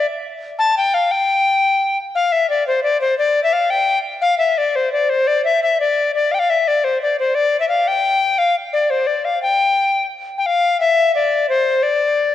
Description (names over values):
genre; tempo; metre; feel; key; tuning
medieval; 116 BPM (dotted quarters); 6/8; straight; unclear; A4 = 440 Hz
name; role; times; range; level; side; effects
bright reedy alto recorder; solo; 0.0-12.3 s; C5 to A5; -15 LUFS; left 3 dB; cassette tape
room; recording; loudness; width
wet lush hall reverb, RT60 2.2 s; home recording on cassette; -15 LUFS; side -12 dB against mid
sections
0.0-2.2 A section; 2.2-10.4 B section; 10.4-12.3 B section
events
none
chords
none